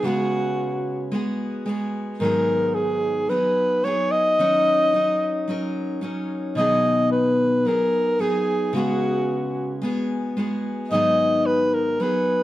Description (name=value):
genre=acoustic folk duo or small band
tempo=110 BPM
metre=4/4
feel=straight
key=unclear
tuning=A4 = 440 Hz
part: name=warm alto saxophone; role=melody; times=0.0-12.4 s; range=Gb4 to Eb5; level=-20 LUFS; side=equal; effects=none
part: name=picked steel-string acoustic guitar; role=accompaniment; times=0.0-12.4 s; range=Ab2 to Bb4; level=-24 LUFS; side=left 1 dB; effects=none
room=moderate large studio reverb, RT60 1.2 s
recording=close, detailed microphones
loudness=-20 LUFS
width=side -14 dB against mid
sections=0.0-12.4 A section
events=none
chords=0.0 Db7sus4; 2.2 Abm7; 4.4 Ebm7; 6.6 Cb6; 8.7 Db7sus4; 10.9 Abm7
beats=| 0.03 0.58 1.12 1.67 | 2.21 2.76 3.30 3.85 | 4.39 4.93 5.48 6.02 | 6.57 7.11 7.65 8.20 | 8.74 9.28 9.83 10.37 | 10.92 11.46 12.00